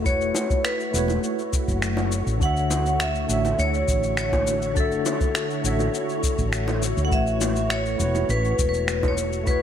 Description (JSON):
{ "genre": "sunset chillout", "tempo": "102 BPM", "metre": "4/4", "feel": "straight", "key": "A major", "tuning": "A4 = 440 Hz", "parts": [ { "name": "tine electric piano", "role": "accompaniment", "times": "0.0-9.6 s", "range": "D3 to E5", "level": "-29 LUFS", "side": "moving between left 10 dB and right 5 dB", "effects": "medium stereo tremolo, auto-pan, low-pass filter" }, { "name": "soft string machine", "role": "sustained chords", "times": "0.0-9.6 s", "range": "D3 to C#5", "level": "-30 LUFS", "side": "left 1 dB", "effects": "phaser, ensemble chorus" }, { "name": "woody fretless electric bass", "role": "bass", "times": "0.0-9.6 s", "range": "E1 to D2", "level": "-26 LUFS", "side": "equal", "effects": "none" }, { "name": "vibraphone with medium hard mallets", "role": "melody", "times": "0.1-9.6 s", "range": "A4 to F#5", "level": "-26 LUFS", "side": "left 1 dB", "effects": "ping-pong delay" }, { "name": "electronic kick drum", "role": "drums", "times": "0.1-9.6 s", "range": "none", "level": "-24 LUFS", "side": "equal", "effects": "none" }, { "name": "electronic shaker and finger snaps", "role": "drums", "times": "0.1-9.6 s", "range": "none", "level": "-30 LUFS", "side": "left 2 dB", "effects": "none" }, { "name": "bongos", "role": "percussion", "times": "0.3-9.1 s", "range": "none", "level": "-32 LUFS", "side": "right 2 dB", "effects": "none" } ], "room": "light reverb, digital ambience", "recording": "none", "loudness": "-21 LUFS", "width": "side -9 dB against mid", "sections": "0.0-9.6 A section", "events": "none", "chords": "0.0 A69; 2.4 Dmaj9; 7.1 A69", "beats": "| 0.06 0.65 1.24 1.82 | 2.41 3.00 3.59 4.18 | 4.76 5.35 5.94 6.53 | 7.12 7.71 8.29 8.88 | 9.47" }